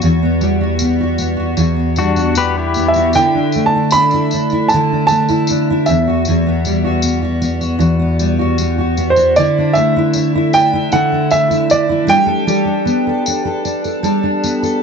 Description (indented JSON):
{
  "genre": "acoustic pop",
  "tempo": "77 BPM",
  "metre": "4/4",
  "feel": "straight",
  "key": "unclear",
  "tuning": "A4 = 441 Hz",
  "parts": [
    { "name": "fingerpicked steel-string acoustic guitar", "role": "accompaniment", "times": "0.0-14.8 s", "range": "E2 to A4", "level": "-14 LUFS", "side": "equal", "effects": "double-tracked left and right" },
    { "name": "tambourine", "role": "percussion", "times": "0.0-14.8 s", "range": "none", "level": "-26 LUFS", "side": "left 6 dB", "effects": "none" },
    { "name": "pedal steel guitar", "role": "second line", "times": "2.0-3.1 s", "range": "D4 to B4", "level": "-18 LUFS", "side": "left 7 dB", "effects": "tape echo" },
    { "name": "warm upright piano", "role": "melody", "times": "2.9-14.8 s", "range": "C5 to B5", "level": "-15 LUFS", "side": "right 2 dB", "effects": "none" }
  ],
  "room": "light reverb, small room reverb",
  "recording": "dark, warm production, nothing above 7.9 kHz",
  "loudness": "-12 LUFS",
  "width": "side -6 dB against mid",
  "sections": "0.0-14.8 A section",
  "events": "none",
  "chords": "0.0 Emadd9; 3.1 Dsus2; 5.9 Emadd9; 9.4 Dsus2; 12.1 Gadd9"
}